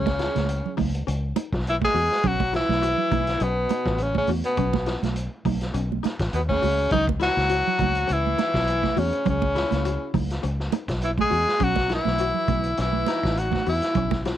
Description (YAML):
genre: afrobeat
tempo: 102 BPM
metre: 4/4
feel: swing 55% on 16ths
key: C# minor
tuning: A4 = 442 Hz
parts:
  - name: edgy tenor saxophone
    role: melody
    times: 0.0-14.2 s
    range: B3 to G#4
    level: -24 LUFS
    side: left 2 dB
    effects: cassette tape
  - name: mellow trombone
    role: second line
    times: 0.0-14.2 s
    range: B2 to G#3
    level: -35 LUFS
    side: right 9 dB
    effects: none
  - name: raspy baritone saxophone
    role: second line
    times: 0.0-14.2 s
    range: B2 to G#3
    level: -36 LUFS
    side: right 11 dB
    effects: none
  - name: kora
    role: arpeggios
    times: 0.0-14.4 s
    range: C#4 to F#4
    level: -34 LUFS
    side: left 10 dB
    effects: none
  - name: fingered electric bass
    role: bass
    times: 0.0-14.3 s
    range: A1 to E2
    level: -27 LUFS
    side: equal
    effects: none
  - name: vintage drum kit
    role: drums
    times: 0.1-14.4 s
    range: hi-hat, kick drum, snare drum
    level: -30 LUFS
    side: left 1 dB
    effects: cassette tape
  - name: congas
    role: percussion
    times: 0.1-14.2 s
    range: none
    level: -28 LUFS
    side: right 12 dB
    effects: none
room: little or no reverb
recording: home recording on cassette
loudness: -21 LUFS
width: side -11 dB against mid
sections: 0.0-14.4 A section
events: none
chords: 0.0 C#m9; 2.2 Bsus4; 6.9 C#m11; 11.6 B7sus4